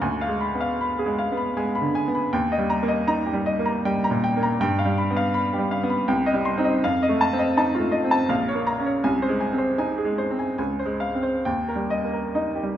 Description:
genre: classical, romantic character piece for solo piano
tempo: 66-83 BPM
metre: 3/4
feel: rubato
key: unclear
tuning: A4 = 440 Hz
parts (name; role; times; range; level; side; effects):
- bright baby grand piano; solo; 0.0-12.8 s; Bb1 to C6; -21 LUFS; equal; none
room: wet recital hall reverb, RT60 1.4 s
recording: none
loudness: -21 LUFS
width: side -11 dB against mid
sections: 0.0-12.8 A section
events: none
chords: 0.0 Ddim7; 2.3 Eb; 4.6 G7; 6.1 Cm; 6.8 F7; 8.3 Bbm; 9.0 Ab/C; 10.6 Dbmaj7; 11.5 Eb

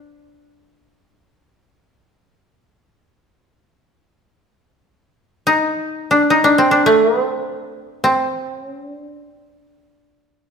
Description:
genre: japanese traditional, Japanese chamber music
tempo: free time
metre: none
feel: none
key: unclear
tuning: A4 = 440 Hz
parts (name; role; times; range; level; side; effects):
- koto; solo; 0.0-10.5 s; C4 to Eb4; -14 LUFS; equal; none
room: moderate scoring stage reverb, RT60 1.7 s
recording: minimal, uncompressed stereo recording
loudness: -14 LUFS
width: side -6 dB against mid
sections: 0.0-10.5 A section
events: none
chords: none

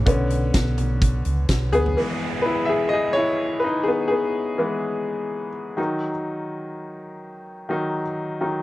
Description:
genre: piano-driven pop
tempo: 126 BPM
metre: 4/4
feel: swing 56% on 16ths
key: E major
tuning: A4 = 440 Hz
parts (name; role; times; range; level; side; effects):
- bright upright piano; accompaniment; 0.0-8.6 s; D3 to E5; -23 LUFS; left 1 dB; none
- hollow-body short-scale fingered electric bass; bass; 0.0-2.0 s; B1 to D2; -22 LUFS; equal; none
- huge arena drum kit; drums; 0.1-2.0 s; hi-hat, kick drum, snare drum, toms; -23 LUFS; right 1 dB; none
- downlifter; sound effects; 2.0-5.8 s; none; -33 LUFS; right 3 dB; none
room: little or no reverb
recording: dry, close 1970s-style studio recording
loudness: -20 LUFS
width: side -16 dB against mid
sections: 0.0-2.0 A section; 2.0-8.6 B section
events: upright piano solo 0.0-2.0, 2.0-8.6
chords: 0.1 Bmadd9; 2.0 E; 5.8 D#m

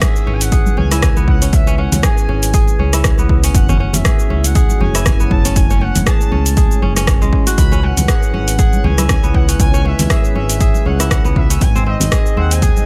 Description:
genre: afro house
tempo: 119 BPM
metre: 4/4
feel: swing 56% on 16ths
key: C# minor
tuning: A4 = 440 Hz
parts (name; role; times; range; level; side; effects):
- expressive portamento lead; melody; 0.0-12.9 s; D#5 to B5; -28 LUFS; equal; lush chorus, digital delay
- dark analog pad; sustained chords; 0.0-12.9 s; G#3 to D#5; -28 LUFS; equal; chorus, sidechain pumping
- kora; arpeggios; 0.0-12.9 s; G#3 to G#4; -25 LUFS; equal; sidechain pumping, digital delay
- afro-pop drum kit; drums; 0.0-12.9 s; cabasa, hi-hat, rim click; -23 LUFS; equal; overdrive
- electronic kick drum; drums; 0.0-12.7 s; none; -16 LUFS; equal; none
- congas; percussion; 0.0-12.9 s; none; -25 LUFS; equal; none
- smooth synth bass; bass; 0.3-12.7 s; F#1 to D#2; -20 LUFS; equal; sidechain pumping
room: little or no reverb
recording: none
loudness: -14 LUFS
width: mono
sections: 0.0-12.9 A section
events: none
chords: 0.0 C#m7; 3.5 F#m7; 7.6 C#m7; 11.6 G#

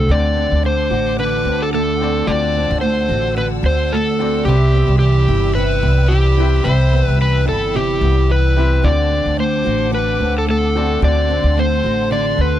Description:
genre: acoustic pop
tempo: 110 BPM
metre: 4/4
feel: swing 55% on 16ths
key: unclear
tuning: A4 = 440 Hz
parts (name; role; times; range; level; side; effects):
- overdriven slide guitar; melody; 0.0-12.6 s; G4 to D5; -19 LUFS; equal; none
- bright upright piano; accompaniment; 0.0-12.6 s; C4 to B5; -29 LUFS; left 8 dB; none
- nylon-string guitar; accompaniment; 0.0-12.6 s; C3 to F#4; -21 LUFS; right 1 dB; double-tracked left and right
- upright bass; bass; 0.0-12.6 s; G1 to D2; -16 LUFS; equal; none
- warm studio string section; sustained chords; 0.1-12.6 s; C4 to E6; -29 LUFS; equal; none
room: little or no reverb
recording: dry, close 1970s-style studio recording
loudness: -14 LUFS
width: side -12 dB against mid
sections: 0.1-12.6 A section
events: none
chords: 0.1 D7; 4.5 Cmaj7; 8.8 D7

